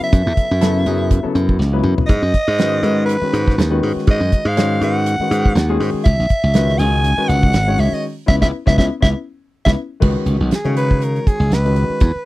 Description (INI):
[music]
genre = electric jazz fusion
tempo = 121 BPM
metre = 4/4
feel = swing 56% on 16ths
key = C# minor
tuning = A4 = 438 Hz
[part]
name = growling soprano saxophone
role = melody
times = 0.0-12.3 s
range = G#4 to G#5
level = -20 LUFS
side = equal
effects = none
[part]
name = warm baby grand piano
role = accompaniment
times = 0.0-12.0 s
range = C#3 to C#5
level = -22 LUFS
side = left 3 dB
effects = none
[part]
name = glassy slap bass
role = bass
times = 0.0-12.2 s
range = G#1 to C#3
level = -17 LUFS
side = equal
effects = none
[part]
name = damped 70s drum kit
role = drums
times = 0.1-12.1 s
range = crash cymbal, hi-hat, kick drum, snare drum, toms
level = -15 LUFS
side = equal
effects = none
[sound]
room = little or no reverb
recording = dry, close 1970s-style studio recording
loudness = -14 LUFS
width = side -18 dB against mid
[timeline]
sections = 0.0-10.0 A section; 10.0-12.3 B section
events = drum fill 1.6-2.1; band accent 8.0-10.0; soprano saxophone solo 10.0-12.3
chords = 0.0 F#m9; 2.1 G#m7; 6.1 C#m9; 10.0 C#9sus4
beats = | 0.11 0.61 1.10 1.60 | 2.09 2.59 3.08 3.58 | 4.07 4.57 5.06 5.56 | 6.05 6.55 7.04 7.54 | 8.04 8.53 9.03 9.53 | 10.02 10.52 11.02 11.52 | 12.01